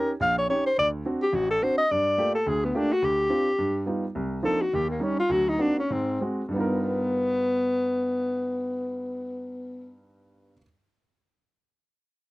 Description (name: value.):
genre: jazz.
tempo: 182-214 BPM.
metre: 4/4.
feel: swing 58% on 8ths.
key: unclear.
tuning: A4 = 442 Hz.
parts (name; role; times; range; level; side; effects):
warm alto saxophone; melody; 0.0-9.9 s; Bb3 to F5; -24 LUFS; left 1 dB; none.
warm baby grand piano; accompaniment; 0.0-10.6 s; A1 to A#4; -29 LUFS; right 1 dB; none.
room: light reverb.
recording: dry, close 1970s-style studio recording.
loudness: -23 LUFS.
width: side -20 dB against mid.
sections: 0.0-4.1 A section; 4.1-6.5 B section; 6.5-9.2 C section.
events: slowing down 4.1-6.5.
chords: 0.0 Eb7; 0.8 D7; 1.9 Gm9; 3.0 Dmadd11; 3.6 Gaug7; 4.1 Cm11; 4.7 Eb7; 5.3 D7b9b13; 5.9 Ab7; 6.5 G7alt.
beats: 0.20 0.49 | 0.77 1.05 1.33 1.61 | 1.89 2.17 2.45 2.73 | 3.01 3.29 3.57 3.85 | 4.13 4.42 4.70 4.99 | 5.28 5.58 5.88 6.20 | 6.53 6.86 7.18 7.52 | 7.85 8.18 8.51 8.84.